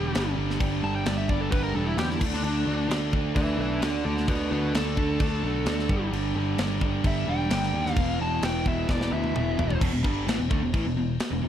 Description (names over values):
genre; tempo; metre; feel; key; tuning
hard rock; 130 BPM; 4/4; straight; E minor; A4 = 440 Hz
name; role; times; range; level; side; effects
dark smooth lead guitar; melody; 0.0-9.8 s; D4 to A5; -32 LUFS; equal; overdrive, slapback echo
biting overdriven guitar; riff; 0.0-11.5 s; E2 to D4; -28 LUFS; right 1 dB; none
picked electric bass; bass; 0.0-11.5 s; E1 to E2; -30 LUFS; equal; none
tight metal drum kit; drums; 0.1-11.3 s; crash cymbal, kick drum, snare drum, toms; -29 LUFS; equal; none
room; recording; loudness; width
light reverb, small room ambience; none; -23 LUFS; side -10 dB against mid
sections
0.0-9.8 A section; 9.8-11.5 B section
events
lead electric guitar solo 0.0-9.8; drum fill 8.9-9.8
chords
0.0 G5; 2.2 D5; 5.9 G5; 8.0 E5; 9.8 Em